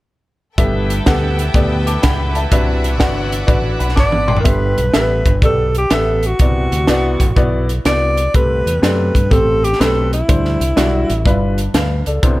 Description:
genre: uptempo gospel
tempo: 124 BPM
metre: 4/4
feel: swing 66% on 8ths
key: G major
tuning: A4 = 441 Hz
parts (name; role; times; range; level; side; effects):
- warm upright piano; accompaniment; 0.6-12.4 s; G2 to D6; -20 LUFS; left 1 dB; none
- bright tonewheel organ; sustained chords; 0.6-4.4 s; E3 to G4; -27 LUFS; right 2 dB; fast rotary speaker, overdrive
- clear studio string section; sustained chords; 0.6-4.4 s; A4 to G5; -29 LUFS; left 2 dB; none
- fingered electric bass; bass; 0.6-12.4 s; G1 to G2; -18 LUFS; equal; none
- crisp fusion drum kit; drums; 0.6-12.4 s; hi-hat, kick drum, snare drum, toms; -16 LUFS; equal; none
- breathy alto saxophone; melody; 4.0-11.5 s; E4 to D5; -18 LUFS; equal; none
room: small room ambience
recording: none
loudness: -13 LUFS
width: side -18 dB against mid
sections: 0.6-4.5 A section; 4.5-12.4 B section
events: drum fill 4.0-4.5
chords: 0.6 G69; 2.5 Cmaj9#11; 4.5 G69; 6.4 Cmaj9#11; 8.3 Am9/C; 11.3 G7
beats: | 0.58 1.07 1.55 2.04 | 2.52 3.01 3.49 3.98 | 4.46 4.95 5.43 5.92 | 6.40 6.88 7.37 7.86 | 8.34 8.82 9.31 9.80 | 10.28 10.77 11.26 11.74 | 12.23

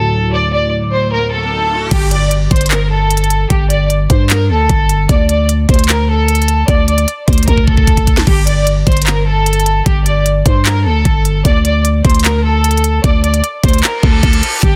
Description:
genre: hip hop, trap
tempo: 151 BPM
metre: 4/4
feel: half-time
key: G harmonic minor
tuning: A4 = 442 Hz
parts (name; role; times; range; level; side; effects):
- rich studio violin section; melody; 0.0-14.8 s; G4 to D5; -19 LUFS; equal; low-pass filter, tape echo
- sweeping resonant pad; sustained chords; 0.0-1.9, 14.6-14.8 s; D2 to Bb3; -20 LUFS; equal; subtle chorus
- riser and reverse cymbal; sound effects; 1.1-1.9, 14.0-14.6 s; none; -25 LUFS; equal; none
- growling 808-style bass; bass; 1.9-14.8 s; G1 to G2; -16 LUFS; equal; none
- trap drum kit; drums; 1.9-14.7 s; crash cymbal, handclaps, hi-hat, kick drum, snare drum; -15 LUFS; equal; none
room: digital ambience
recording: dense, heavily limited modern master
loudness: -12 LUFS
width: mono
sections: 0.0-1.9 A section; 1.9-14.6 B section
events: riser 1.1-1.9; drum fill 7.5-8.3; reverse cymbal 14.0-14.6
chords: 0.0 D; 1.9 Gsus2; 5.1 D5; 8.3 Gsus2; 11.4 D5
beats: | 0.32 0.72 1.12 1.52 | 1.91 2.31 2.71 3.10 | 3.50 3.90 4.30 4.70 | 5.09 5.49 5.89 6.28 | 6.68 7.08 7.48 7.87 | 8.27 8.67 9.07 9.46 | 9.86 10.26 10.65 11.05 | 11.45 11.85 12.24 12.64 | 13.04 13.44 13.83 14.23 | 14.63

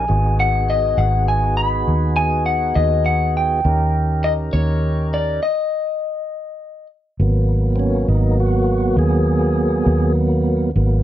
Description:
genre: blues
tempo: 68 BPM (dotted quarters)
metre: 12/8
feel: straight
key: G# minor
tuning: A4 = 439 Hz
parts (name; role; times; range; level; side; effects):
- electric guitar through a small old amp; melody; 0.0-6.9 s; C#5 to B5; -20 LUFS; left 2 dB; none
- tonewheel organ; sustained chords; 0.0-11.0 s; F#3 to A#4; -21 LUFS; right 2 dB; slow rotary speaker
- vintage muted fingered electric bass; bass; 0.0-11.0 s; G#1 to D#2; -18 LUFS; equal; none
room: light reverb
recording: none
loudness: -16 LUFS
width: side -12 dB against mid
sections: 0.0-7.2 A section; 7.2-11.0 B section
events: stop 5.4-7.2; tonewheel organ solo 7.2-11.0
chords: 0.1 G#m7; 3.7 D#7; 7.2 G#m7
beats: | 0.10 0.99 1.88 2.77 | 3.65 4.54 5.43 6.31 | 7.20 8.09 8.97 9.86 | 10.74

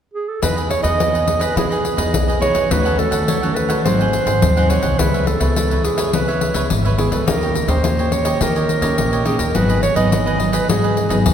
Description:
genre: samba and choro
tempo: 105 BPM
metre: 4/4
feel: straight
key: E major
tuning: A4 = 440 Hz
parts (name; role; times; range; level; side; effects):
- warm clarinet; melody; 0.1-11.2 s; G#4 to D#5; -20 LUFS; right 2 dB; none
- cavaquinho; accompaniment; 0.4-11.3 s; D#4 to F#5; -25 LUFS; right 2 dB; none
- nylon-string guitar; accompaniment; 0.4-11.3 s; G#2 to G#4; -22 LUFS; left 1 dB; none
- upright bass; bass; 0.4-11.3 s; G#1 to E3; -20 LUFS; equal; none
- pandeiro; percussion; 0.4-11.3 s; none; -21 LUFS; left 4 dB; none
room: wet church reverb, RT60 3.4 s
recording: recorded in a church or concert hall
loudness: -15 LUFS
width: side -8 dB against mid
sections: 0.4-11.3 A section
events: none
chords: 0.4 Emaj7; 2.7 D#m7b5; 3.8 G#7; 5.0 C#m7; 7.3 D#7; 9.5 G#m7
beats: | 0.42 0.99 1.57 2.14 | 2.71 3.28 3.85 4.42 | 4.99 5.56 6.13 6.70 | 7.27 7.84 8.41 8.98 | 9.55 10.12 10.69 11.26

